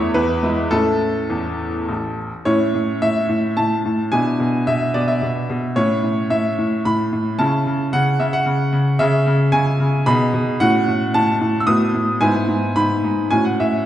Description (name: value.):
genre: classical-period piano sonatina.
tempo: 110 BPM.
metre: 3/4.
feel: rubato.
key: A major, E major from 9.0 s.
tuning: A4 = 440 Hz.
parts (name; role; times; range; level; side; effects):
bright baby grand piano; solo; 0.0-13.9 s; A1 to E6; -16 LUFS; equal; none.
room: wet recital hall reverb, RT60 1.5 s.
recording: heard from further back in the room, nothing above 11.0 kHz.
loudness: -16 LUFS.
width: side -12 dB against mid.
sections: 0.0-2.5 A section; 2.5-13.9 B section.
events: none.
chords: 0.2 E; 0.7 A; 4.1 E7/B; 5.8 A; 7.4 A/C#; 9.0 C#m; 10.1 G#m/B; 10.6 F#m/A; 11.7 B7/A; 12.2 E/G#; 13.3 F#m7/A.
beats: 0.15 | 0.72 1.31 1.89 | 2.47 3.02 3.57 | 4.12 4.67 5.22 | 5.76 6.30 6.85 | 7.39 7.93 8.46 | 8.99 9.52 10.06 | 10.60 11.14 11.68 | 12.22 12.76 13.31.